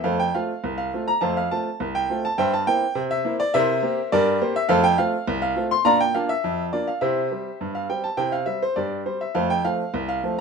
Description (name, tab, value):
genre	ragtime piano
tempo	103 BPM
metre	2/4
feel	straight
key	F major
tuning	A4 = 440 Hz
part	clear upright piano	solo	0.0-10.4 s	C2 to C6	-20 LUFS	equal	none
room	moderate studio reverb, RT60 0.7 s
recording	minimal, uncompressed stereo recording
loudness	-20 LUFS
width	side -5 dB against mid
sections	0.1-10.4 A section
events	none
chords	0.1 F; 2.4 C7/G; 4.7 F; 5.9 Bb; 7.0 C; 9.4 F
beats	| 0.05 0.64 | 1.22 1.80 | 2.38 2.96 | 3.54 4.12 | 4.70 5.28 | 5.86 6.44 | 7.03 7.61 | 8.20 8.78 | 9.36 9.95